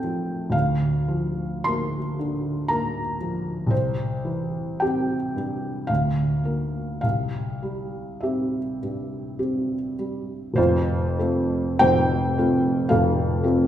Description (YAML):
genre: classical, romantic nocturne for solo piano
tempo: 46-60 BPM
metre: 3/4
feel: rubato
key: F major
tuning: A4 = 440 Hz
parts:
  - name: felt-muted upright piano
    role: solo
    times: 0.0-13.7 s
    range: F1 to C6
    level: -22 LUFS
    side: equal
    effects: none
room: wet recital hall reverb, RT60 1.4 s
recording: heard from further back in the room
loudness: -22 LUFS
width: side -11 dB against mid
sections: 0.0-10.6 A section; 10.6-13.7 A section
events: none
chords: 0.0 F/A; 0.5 Bb/D; 3.7 C; 5.9 Bb/D; 7.0 C; 10.6 F